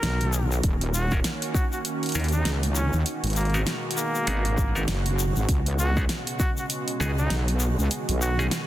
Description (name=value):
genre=glitch hop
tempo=99 BPM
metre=4/4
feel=swing 59% on 16ths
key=Eb minor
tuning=A4 = 440 Hz
part: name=warm trumpet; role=melody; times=0.0-8.4 s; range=Bb3 to Bb4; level=-32 LUFS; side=equal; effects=digital delay
part: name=warm analog pad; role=sustained chords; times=0.0-8.7 s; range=Cb3 to Gb4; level=-32 LUFS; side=right 2 dB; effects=wide subtle chorus, sidechain pumping
part: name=wobble bass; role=bass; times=0.0-8.5 s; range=Eb1 to Eb2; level=-24 LUFS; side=equal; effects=chorus, tube saturation
part: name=pop drum kit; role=drums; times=0.0-8.7 s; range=hi-hat, snare drum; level=-31 LUFS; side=equal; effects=none
part: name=egg shaker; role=percussion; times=0.0-8.7 s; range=none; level=-34 LUFS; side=left 5 dB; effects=none
part: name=electronic kick drum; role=drums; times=0.6-6.5 s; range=none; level=-25 LUFS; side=equal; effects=none
part: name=bright clav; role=stabs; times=1.1-8.5 s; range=Cb4 to Bb4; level=-36 LUFS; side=equal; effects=vintage 12-bit sampler grit, sidechain pumping, digital delay
room=light reverb, digital ambience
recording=dense, heavily limited modern master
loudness=-22 LUFS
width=side -14 dB against mid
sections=0.0-8.7 A section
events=none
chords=0.0 B6; 0.6 Ebm7; 3.1 Abm7; 5.5 Db7sus4